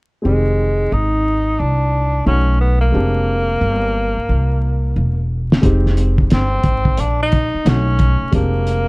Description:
hip hop, jazz-hop; 89 BPM; 4/4; swing 64% on 16ths; F dorian; A4 = 440 Hz
dark grand piano; accompaniment; 0.2-8.9 s; Eb3 to G4; -24 LUFS; equal
upright bass; bass; 0.2-8.9 s; E1 to C2; -16 LUFS; equal
breathy tenor saxophone; melody; 0.3-8.9 s; Ab3 to Eb4; -20 LUFS; equal
cloth-damped thuddy drum kit; drums; 5.5-8.9 s; hi-hat, kick drum, snare drum; -16 LUFS; equal
small room ambience; dark, warm production, vinyl crackle; -14 LUFS; side -27 dB against mid
0.2-5.6 A section; 5.6-8.9 B section
drum fill 4.3-5.6
0.2 Fm7; 2.3 B9; 2.9 Bb13/F; 5.6 Fm7; 7.7 B9; 8.3 Bb13/F

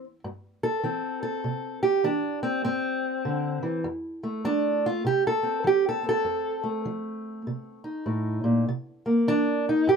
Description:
acoustic country blues, solo or duo; 100 BPM; 4/4; swing 62% on 8ths; C mixolydian; A4 = 439 Hz
fingerpicked steel-string acoustic guitar; solo; 0.0-10.0 s; F2 to A4; -24 LUFS; right 1 dB
light reverb; close, detailed microphones; -24 LUFS; side -6 dB against mid
0.0-10.0 A section
steel-string acoustic guitar solo 0.0-10.0
0.0 C; 3.8 F7; 8.7 C7

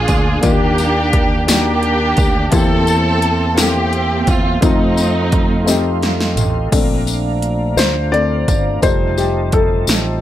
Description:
slow gospel; 57 BPM (dotted quarters); 6/8; straight; Bb major; A4 = 444 Hz
warm studio string section; melody; 0.0-6.0 s; A3 to A4; -17 LUFS; right 1 dB
warm baby grand piano; accompaniment; 0.0-10.2 s; Bb2 to D5; -19 LUFS; left 4 dB
mellow tonewheel organ; sustained chords; 0.0-10.2 s; A3 to D6; -24 LUFS; right 4 dB; fast rotary speaker, chorus vibrato
fingered electric bass; bass; 0.0-10.2 s; F1 to F2; -19 LUFS; equal
80s electronic pad drums; drums; 0.1-10.1 s; crash cymbal, hi-hat, kick drum, snare drum, toms; -17 LUFS; equal; gated reverb on snare and toms, overdrive
tambourine; percussion; 0.1-10.2 s; -25 LUFS; left 8 dB
warm French horn section; sustained chords; 6.7-10.2 s; F3 to Eb4; -28 LUFS; right 1 dB
light reverb, small room ambience; -13 LUFS; side -12 dB against mid
0.0-6.7 A section; 6.7-10.2 B section
drum fill 5.7-6.7; grand piano solo 6.7-10.2
0.4 Ebmaj7; 2.5 C7/E; 4.6 F7; 6.7 Bbmaj7; 8.8 F7

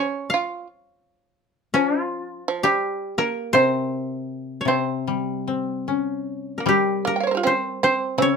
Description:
japanese traditional, Japanese chamber music; 73-86 BPM; 4/4; rubato; C in sen; A4 = 441 Hz
koto; melody; 0.0-8.4 s; F4 to F5; -22 LUFS; left 1 dB
shamisen; second line; 0.0-8.4 s; F3 to G5; -25 LUFS; right 6 dB
koto; accompaniment; 3.5-8.4 s; C3 to Db4; -25 LUFS; left 6 dB
moderate studio reverb, RT60 0.6 s; -21 LUFS; side -5 dB against mid
0.0-6.7 A section; 6.7-8.4 B section

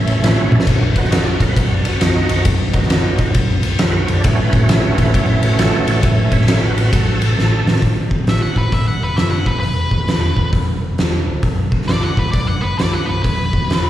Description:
blues rock power trio and southern rock; 134 BPM; 4/4; swing 64% on 8ths; A4 = 440 Hz
overdriven tonewheel organ; sustained chords; 0.0-7.8 s; E3 to E5; -21 LUFS; right 4 dB; slow rotary speaker, chorus vibrato
hollow-body short-scale picked electric bass; bass; 0.1-13.9 s; B0 to E2; -18 LUFS; equal
oversized low-tuned drum kit; drums; 0.1-13.8 s; crash cymbal, hi-hat, kick drum, ride cymbal, snare drum, toms; -16 LUFS; equal
octave-fuzz lead guitar; melody; 8.3-13.9 s; B4 to F#5; -22 LUFS; left 1 dB; distortion, slapback echo
light reverb, studio reverb; live gig heard through the venue's PA, recital hall reverb; -13 LUFS; side -12 dB against mid
0.0-7.8 A section; 7.8-13.9 B section
tonewheel organ solo 0.0-7.8; drum fill 0.4, 7.4-7.8
0.0 A; 0.7 B; 4.2 A; 7.8 A5; 9.4 E5; 11.4 B5; 13.2 E5

